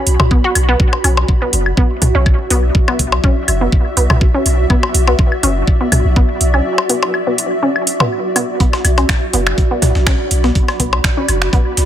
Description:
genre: minimal techno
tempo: 123 BPM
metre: 4/4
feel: swing 54% on 16ths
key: B minor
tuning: A4 = 439 Hz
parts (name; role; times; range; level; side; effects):
- granular cloud pad; texture; 0.0-11.9 s; F#4 to B5; -20 LUFS; equal; built-in reverb, sidechain pumping
- punchy sub bass; bass; 0.1-11.9 s; F#1 to B1; -14 LUFS; equal; sidechain pumping
- garage drum kit; drums; 0.1-11.9 s; finger snaps, hi-hat; -18 LUFS; right 2 dB; none
- electronic toms, percussion blips and claves; percussion; 0.2-11.4 s; none; -17 LUFS; left 2 dB; tape echo
- resonant blip pluck; riff; 0.3-11.6 s; B3 to F#4; -20 LUFS; equal; chorus, cassette tape, sidechain pumping, dub echo
- electronic kick drum; drums; 0.3-11.6 s; none; -14 LUFS; equal; none
- breakbeat sampler-style drum kit; drums; 8.6-11.9 s; hi-hat, snare drum; -28 LUFS; right 1 dB; high-pass filter on hats, high-pass filter on snare
room: little or no reverb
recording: none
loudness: -11 LUFS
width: side -11 dB against mid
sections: 0.0-11.9 A section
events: break 6.7-8.6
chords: 0.0 Bm

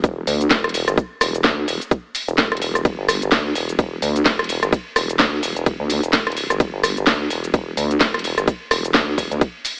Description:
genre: bass house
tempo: 128 BPM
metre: 4/4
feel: swing 58% on 16ths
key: E minor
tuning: A4 = 440 Hz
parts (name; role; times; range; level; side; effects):
- vowel-sweep wobble bass; bass; 0.0-9.4 s; E1 to D2; -22 LUFS; equal; chorus, overdrive, sidechain pumping
- electronic kick drum; drums; 0.0-9.5 s; none; -18 LUFS; equal; none
- garage drum kit; drums; 0.0-9.8 s; hi-hat, ride cymbal, rim click, shaker, snare drum; -19 LUFS; equal; none
room: light reverb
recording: AM radio sound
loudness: -17 LUFS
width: side -37 dB against mid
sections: 0.0-9.8 A section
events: none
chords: none

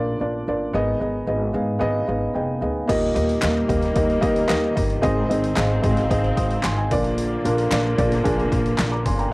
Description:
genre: piano-driven pop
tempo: 112 BPM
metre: 4/4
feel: straight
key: Eb major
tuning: A4 = 440 Hz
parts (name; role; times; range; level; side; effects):
- dark upright piano; accompaniment; 0.0-9.3 s; Ab2 to Eb6; -21 LUFS; equal; cassette tape
- upright bass; bass; 0.0-9.3 s; F1 to Ab2; -24 LUFS; equal; none
- rich studio string section; sustained chords; 2.9-9.3 s; D3 to C4; -30 LUFS; left 1 dB; cassette tape
- deep house drum kit; drums; 2.9-9.3 s; crash cymbal, handclaps, hi-hat, kick drum, snare drum; -26 LUFS; equal; overdrive, cassette tape
- group handclap; percussion; 3.4-8.9 s; none; -31 LUFS; left 3 dB; none
room: little or no reverb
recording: home recording on cassette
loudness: -19 LUFS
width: side -24 dB against mid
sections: 0.0-2.9 A section; 2.9-9.3 B section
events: upright piano fill 1.8-2.9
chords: 0.0 Bb; 0.7 Abm; 2.9 Eb; 5.0 Ab; 6.9 Bb

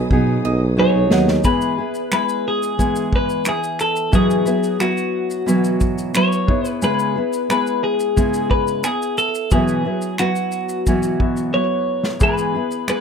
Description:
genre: acoustic pop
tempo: 89 BPM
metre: 4/4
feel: straight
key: E major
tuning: A4 = 440 Hz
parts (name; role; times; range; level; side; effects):
- twelve-string electric guitar; melody; 0.0-13.0 s; F#4 to D#5; -20 LUFS; left 2 dB; slapback echo
- bright concert grand piano; accompaniment; 0.0-13.0 s; G#3 to E5; -30 LUFS; left 8 dB; none
- nylon-string guitar; accompaniment; 0.0-13.0 s; B2 to B4; -20 LUFS; right 1 dB; none
- warm studio string section; sustained chords; 0.0-1.4 s; B4 to D#6; -35 LUFS; left 2 dB; none
- mellow tuba; bass; 0.0-1.4 s; B1 to B2; -19 LUFS; equal; none
- unplugged drum kit; drums; 0.1-13.0 s; finger snaps, kick drum, shaker, snare drum; -21 LUFS; equal; none
- bowl-back mandolin; arpeggios; 0.4-1.3 s; D#5 to F#5; -27 LUFS; right 6 dB; none
room: little or no reverb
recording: close, detailed microphones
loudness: -16 LUFS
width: side -6 dB against mid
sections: 0.0-1.4 A section; 1.4-13.0 B section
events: drum fill 0.1-1.4, 11.5-12.2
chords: 0.0 B6; 1.4 E; 4.1 Bsus4; 6.5 C#m7; 9.5 Bsus4; 12.2 E

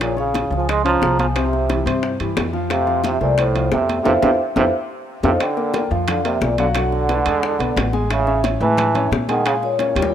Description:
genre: Afro-Cuban jazz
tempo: 178 BPM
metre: 4/4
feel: straight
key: unclear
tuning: A4 = 440 Hz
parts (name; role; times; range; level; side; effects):
- vibraphone with soft mallets; melody; 0.0-10.1 s; C5 to C6; -22 LUFS; left 1 dB; none
- bright trombone; second line; 0.0-10.1 s; A2 to Ab3; -22 LUFS; right 4 dB; none
- warm baby grand piano; accompaniment; 0.0-10.1 s; C3 to Ab5; -24 LUFS; left 2 dB; none
- upright bass; bass; 0.0-10.1 s; A1 to Bb2; -23 LUFS; equal; none
- bongos; percussion; 0.0-10.1 s; none; -28 LUFS; left 6 dB; none
- congas; percussion; 0.0-10.1 s; none; -28 LUFS; left 2 dB; none
- timbales; percussion; 0.0-10.1 s; none; -29 LUFS; right 7 dB; none
room: light reverb, small room ambience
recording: rough home demo mix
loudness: -16 LUFS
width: side -9 dB against mid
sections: 0.0-5.4 A section; 5.4-10.1 B section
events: band accent 4.1-5.4; drum fill 4.6-5.4, 9.8-10.1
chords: 0.0 Bbm7; 1.4 C; 2.7 Fmaj7; 4.7 F7; 5.4 Bb6; 6.8 Bm7; 7.4 E9; 8.1 Amaj9; 9.5 Bbm7

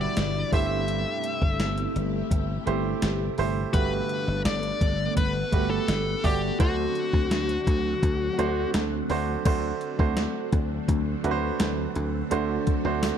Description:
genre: 1980s-style pop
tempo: 84 BPM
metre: 4/4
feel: straight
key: unclear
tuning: A4 = 441 Hz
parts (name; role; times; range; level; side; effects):
- dark smooth lead guitar; melody; 0.0-8.7 s; F#4 to E5; -30 LUFS; left 4 dB; overdrive
- clear baby grand piano; accompaniment; 0.0-13.2 s; G2 to D5; -30 LUFS; right 8 dB; none
- phased string machine; sustained chords; 0.0-13.2 s; B2 to F#5; -32 LUFS; equal; ensemble chorus, phaser
- dry thumbed slap bass; bass; 0.0-13.1 s; G1 to D2; -29 LUFS; left 1 dB; none
- gated 80s digital drum machine; drums; 0.2-13.2 s; crash cymbal, hi-hat, kick drum, snare drum, tambourine; -26 LUFS; equal; gated reverb, gated reverb snare
room: digital ambience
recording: dry, close 1970s-style studio recording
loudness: -23 LUFS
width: side -8 dB against mid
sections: 0.0-9.5 A section; 9.5-13.2 B section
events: none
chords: 0.0 Em9/G; 0.5 Am7/G; 3.7 Gmaj9; 6.6 D7

